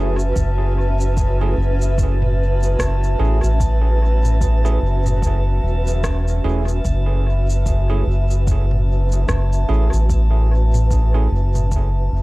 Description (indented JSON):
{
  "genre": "ambient dub",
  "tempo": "74 BPM",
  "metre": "4/4",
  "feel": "swing 59% on 16ths",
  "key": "F# minor",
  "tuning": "A4 = 441 Hz",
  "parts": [
    { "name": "granular cloud pad", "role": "sustained chords", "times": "0.0-12.2 s", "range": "C#4 to E5", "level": "-26 LUFS", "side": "equal", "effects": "built-in reverb, cassette tape" },
    { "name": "bell-like tine electric piano", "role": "stabs", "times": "0.0-11.3 s", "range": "A3 to G#4", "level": "-30 LUFS", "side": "right 6 dB", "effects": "cassette tape, dub echo" },
    { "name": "round analog bass", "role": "bass", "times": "0.0-12.2 s", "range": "E1 to A1", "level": "-16 LUFS", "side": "equal", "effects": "tube saturation" },
    { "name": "drifting glass-harmonics texture", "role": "texture", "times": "0.0-12.2 s", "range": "A5", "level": "-32 LUFS", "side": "left 1 dB", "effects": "chorus, built-in reverb, cassette tape" },
    { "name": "organic electronic drum kit", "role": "drums", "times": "0.2-11.9 s", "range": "rim click, shaker, toms", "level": "-29 LUFS", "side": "equal", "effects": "dub echo" },
    { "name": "electronic kick drum", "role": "drums", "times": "0.4-11.9 s", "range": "none", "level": "-22 LUFS", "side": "equal", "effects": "none" }
  ],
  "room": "digital ambience",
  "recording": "home recording on cassette",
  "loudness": "-15 LUFS",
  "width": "side -20 dB against mid",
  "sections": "0.0-12.2 A section",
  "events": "fade-out 11.2-12.2",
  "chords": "0.0 F#m7",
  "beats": "| 0.36 1.17 1.98 2.79 | 3.60 4.42 5.23 6.04 | 6.85 7.66 8.47 9.28 | 10.09 10.90 11.71"
}